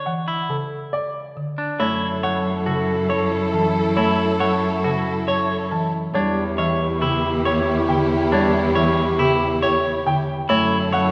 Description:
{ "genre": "classical, minimalist pattern music", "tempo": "138 BPM", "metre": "5/4", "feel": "straight", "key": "unclear", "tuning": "A4 = 440 Hz", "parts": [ { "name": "clean electric guitar", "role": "arpeggios", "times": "0.0-11.1 s", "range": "D4 to C#5", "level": "-26 LUFS", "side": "equal", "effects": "none" }, { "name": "clear baby grand piano", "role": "melody", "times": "0.1-11.1 s", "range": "G4 to A5", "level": "-28 LUFS", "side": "equal", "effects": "none" }, { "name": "folk marimba with medium mallets", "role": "accompaniment", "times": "0.1-11.1 s", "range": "C#3 to A3", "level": "-28 LUFS", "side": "equal", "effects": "none" }, { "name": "bright clarinet", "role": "second line", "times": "1.8-11.1 s", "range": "G4 to A4", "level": "-29 LUFS", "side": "equal", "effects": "none" }, { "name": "rich symphonic string section", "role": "sustained chords", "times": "1.8-11.1 s", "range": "E4 to A4", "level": "-29 LUFS", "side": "equal", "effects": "none" }, { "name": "rich cello", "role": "bass", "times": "1.8-11.1 s", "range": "E2 to F#2", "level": "-27 LUFS", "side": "equal", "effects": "none" } ], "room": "wet concert hall reverb, RT60 2.1 s", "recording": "none", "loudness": "-20 LUFS", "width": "mono", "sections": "0.0-1.8 A section; 1.8-11.1 B section", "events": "none", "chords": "0.0 Dmaj7(no3); 1.8 F#m7; 6.1 Em7; 10.5 F#m7", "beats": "0.06 0.49 0.93 1.36 | 1.80 2.23 2.67 3.10 3.54 | 3.97 4.41 4.84 5.28 5.71 | 6.15 6.58 7.02 7.45 7.89 | 8.32 8.76 9.19 9.62 10.06 | 10.49 10.93" }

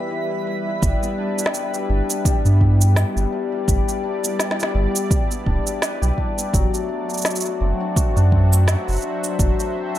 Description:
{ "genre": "folktronica", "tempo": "84 BPM", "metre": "4/4", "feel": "swing 56% on 16ths", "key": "G major", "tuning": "A4 = 440 Hz", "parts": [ { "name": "warm analog pad", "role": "sustained chords", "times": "0.0-10.0 s", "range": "F#3 to E5", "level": "-29 LUFS", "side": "right 1 dB", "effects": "chorus, tremolo" }, { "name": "cimbalom", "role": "arpeggios", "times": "0.0-10.0 s", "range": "E3 to E5", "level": "-25 LUFS", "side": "left 5 dB", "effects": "vintage 12-bit sampler grit, digital delay, plate reverb" }, { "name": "twinkling granular texture", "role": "texture", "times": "0.0-0.8 s", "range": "B5", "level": "-37 LUFS", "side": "right 4 dB", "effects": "built-in reverb, plate reverb" }, { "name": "warm sub bass", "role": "bass", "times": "0.8-9.5 s", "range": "D1 to G2", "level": "-16 LUFS", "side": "right 1 dB", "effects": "tube saturation" }, { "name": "electronic kick drum", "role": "drums", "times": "0.8-9.6 s", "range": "none", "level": "-20 LUFS", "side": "right 1 dB", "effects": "none" }, { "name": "electronic shaker and snare drum", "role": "drums", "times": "0.8-10.0 s", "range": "none", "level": "-24 LUFS", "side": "right 2 dB", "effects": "none" } ], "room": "light reverb", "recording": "none", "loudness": "-18 LUFS", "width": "side -13 dB against mid", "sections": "0.8-10.0 A section", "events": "none", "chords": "0.0 Em; 0.8 G; 6.5 D7/F#", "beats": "0.11 | 0.82 1.54 2.25 2.97 | 3.68 4.39 5.11 5.82 | 6.54 7.25 7.97 8.68 | 9.39" }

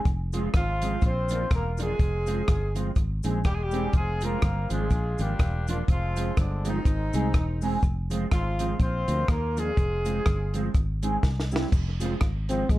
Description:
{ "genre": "ska", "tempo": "123 BPM", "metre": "4/4", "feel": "swing 58% on 8ths", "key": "F dorian", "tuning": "A4 = 440 Hz", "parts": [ { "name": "fingered electric bass", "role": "bass", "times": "0.1-12.8 s", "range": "E1 to Eb2", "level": "-28 LUFS", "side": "equal", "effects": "none" }, { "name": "compact cocktail drum kit", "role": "drums", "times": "0.1-12.8 s", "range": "crash cymbal, hi-hat, kick drum, rim click, snare drum", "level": "-25 LUFS", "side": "equal", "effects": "none" }, { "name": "cabasa", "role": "percussion", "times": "0.1-12.8 s", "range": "none", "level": "-50 LUFS", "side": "left 12 dB", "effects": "tape echo" }, { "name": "mellow electric guitar", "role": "accompaniment", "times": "0.3-12.6 s", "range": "F3 to Ab4", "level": "-31 LUFS", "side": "right 2 dB", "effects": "ensemble chorus, plate reverb" }, { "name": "warm horn section", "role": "melody", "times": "0.6-10.6 s", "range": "D3 to C5", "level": "-31 LUFS", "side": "equal", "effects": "plate reverb" }, { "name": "dark trombone", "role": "melody", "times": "12.5-12.8 s", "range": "Ab3 to C4", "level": "-27 LUFS", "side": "left 1 dB", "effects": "none" } ], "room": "light reverb", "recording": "dark, warm production", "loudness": "-24 LUFS", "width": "side -16 dB against mid", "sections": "0.0-11.7 A section; 11.7-12.8 B section", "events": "drum fill 11.2-11.7; trombone solo 11.7-12.8", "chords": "0.1 Fm; 1.0 Bb; 2.0 Fm; 3.0 Ab; 3.9 Fm; 4.9 Bb; 5.9 Fm; 6.9 Ab; 7.8 Fm; 8.8 Bb; 9.8 Fm; 10.8 Ab; 11.2 C; 11.7 Fm", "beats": "| 0.06 0.54 1.02 1.51 | 2.00 2.48 2.97 3.45 | 3.94 4.42 4.91 5.40 | 5.88 6.37 6.86 7.34 | 7.83 8.32 8.80 9.29 | 9.78 10.27 10.75 11.24 | 11.72 12.21 12.70" }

